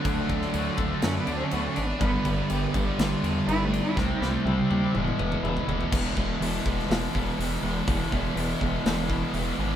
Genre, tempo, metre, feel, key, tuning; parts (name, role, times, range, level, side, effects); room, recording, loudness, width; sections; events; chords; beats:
quiet-loud alternative rock; 123 BPM; 4/4; straight; A4 = 440 Hz
warm cello; melody; 0.0-4.9 s; G3 to E4; -31 LUFS; right 1 dB
twelve-string electric guitar; arpeggios; 0.0-5.9 s; E2 to G4; -34 LUFS; left 7 dB; harmonic tremolo
thick fuzz guitar; riff; 0.0-9.8 s; G2 to E4; -29 LUFS; right 4 dB; distortion
tight distorted guitar; riff; 0.0-9.8 s; E2 to D4; -32 LUFS; left 7 dB; distortion
big rock drum kit; drums; 0.0-9.5 s; crash cymbal, hi-hat, kick drum, snare drum, toms; -30 LUFS; equal
gritty driven synth bass; bass; 0.1-9.8 s; E1 to F#2; -31 LUFS; equal
moderate stone room reverb, RT60 1.1 s; band playing live in one room; -24 LUFS; side -10 dB against mid
0.0-5.9 A section; 5.9-9.8 B section
cello solo 0.0-5.9; drum fill 4.0-5.9
0.0 D; 2.0 G; 4.0 C; 4.9 E
| 0.05 0.54 1.03 1.52 | 2.01 2.50 2.99 3.48 | 3.97 4.46 4.95 5.43 | 5.92 6.41 6.90 7.39 | 7.88 8.36 8.85 9.34